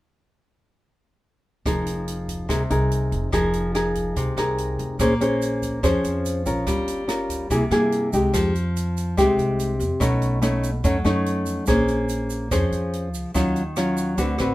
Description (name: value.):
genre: bossa nova.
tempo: 144 BPM.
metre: 4/4.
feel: straight.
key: F minor.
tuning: A4 = 440 Hz.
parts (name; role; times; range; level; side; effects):
nylon-string guitar; accompaniment; 1.7-14.5 s; B2 to C5; -21 LUFS; left 1 dB; none.
upright bass; bass; 1.7-14.5 s; F1 to G2; -27 LUFS; equal; none.
open jazz drum kit; drums; 1.7-14.5 s; hi-hat, kick drum, rim click; -30 LUFS; right 1 dB; none.
tube shaker; percussion; 5.0-14.5 s; none; -39 LUFS; right 7 dB; none.
room: moderate studio reverb, RT60 0.6 s.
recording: minimal, uncompressed stereo recording.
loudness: -20 LUFS.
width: side -17 dB against mid.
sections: 1.7-8.3 A section; 8.3-14.5 B section.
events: none.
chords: 1.7 Fm7; 5.0 Bbm9; 6.7 Gm7b5; 7.5 C7b13; 8.3 Fm9; 10.0 B9; 11.7 Bbm9; 13.3 Ebm9.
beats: | 1.66 2.07 2.49 2.91 | 3.33 3.74 4.16 4.58 | 5.00 5.41 5.83 6.25 | 6.67 7.08 7.50 7.92 | 8.34 8.76 9.17 9.59 | 10.01 10.43 10.84 11.26 | 11.68 12.10 12.51 12.93 | 13.35 13.77 14.18.